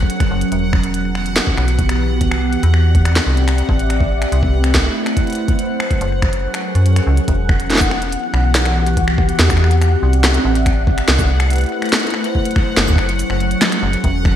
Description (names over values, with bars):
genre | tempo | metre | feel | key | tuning
IDM | 142 BPM | 4/4 | straight | E minor | A4 = 440 Hz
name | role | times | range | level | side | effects
glassy FM pad | sustained chords | 0.0-14.4 s | E3 to E5 | -21 LUFS | equal | ensemble chorus, built-in reverb, phaser, vintage 12-bit sampler grit
metallic FM bass | bass | 0.0-14.4 s | E1 to F#2 | -16 LUFS | equal | none
electronic kick drum | drums | 0.0-14.3 s | none | -17 LUFS | equal | overdrive
bubbling stepped-filter texture | texture | 0.0-14.4 s | F#5 | -26 LUFS | left 1 dB | chorus, built-in reverb
glitchy drum kit | drums | 0.1-14.3 s | finger snaps, hi-hat, shaker, snare drum | -20 LUFS | equal | gated reverb, ping-pong delay
room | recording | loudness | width
moderate lush hall reverb, RT60 1.7 s | bright 1980s-style digital production | -13 LUFS | side -10 dB against mid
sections
0.0-7.3 A section; 7.3-14.4 B section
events
kick drops out 6.4-7.3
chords
0.0 F#; 0.5 Emadd9; 2.2 C; 3.9 Am7; 5.6 F#; 7.3 Emadd9; 9.0 C; 10.7 Am7; 12.4 F#